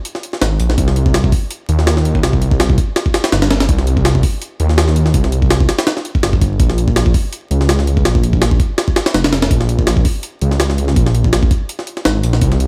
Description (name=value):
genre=drum and bass, jungle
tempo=165 BPM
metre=4/4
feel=swing 54% on 16ths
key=Bb dorian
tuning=A4 = 440 Hz
part: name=jungle sampler-style drum kit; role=drums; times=0.1-12.7 s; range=hi-hat, kick drum, snare drum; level=-17 LUFS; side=equal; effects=none
part: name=detuned saw bass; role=bass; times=0.4-12.7 s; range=F1 to Eb2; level=-17 LUFS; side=equal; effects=none
room=little or no reverb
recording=vinyl crackle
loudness=-15 LUFS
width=mono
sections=0.0-12.7 A section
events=none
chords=none